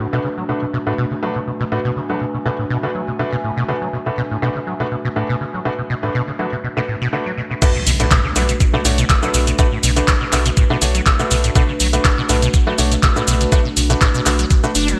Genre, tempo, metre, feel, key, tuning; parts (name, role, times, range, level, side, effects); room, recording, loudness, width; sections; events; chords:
acid house; 122 BPM; 4/4; swing 54% on 16ths; A4 = 441 Hz
dark analog pad; sustained chords; 0.0-15.0 s; A3 to E5; -29 LUFS; equal; chorus, sidechain pumping
acid bass, saw; riff; 0.0-15.0 s; A2 to D4; -24 LUFS; equal; ensemble chorus, digital delay
warbly tape-like pad; texture; 0.0-7.6 s; D4 to A5; -37 LUFS; equal
clear concert grand piano; stabs; 0.1-14.7 s; A3 to C#5; -26 LUFS; equal; vintage 12-bit sampler grit, low-pass filter, digital delay
electronic kick drum; drums; 7.6-14.6 s; -17 LUFS; equal
punchy analog drum machine; drums; 7.6-15.0 s; cabasa, crash cymbal, handclaps, hi-hat; -21 LUFS; equal; low-pass filter on hats, low-pass filter on cymbals, low-pass filter on perc, low-pass filter on snare, low-pass filter on room, gated reverb
impact; sound effects; 7.6-9.6 s; -30 LUFS; equal
warm sub bass; bass; 7.9-14.9 s; F#1 to B1; -21 LUFS; equal; sidechain pumping
light reverb, digital ambience; bright 1980s-style digital production; -18 LUFS; mono
0.0-7.6 A section; 7.6-15.0 B section
drop 7.6-15.0; impact 7.6-9.6
0.0 Bm7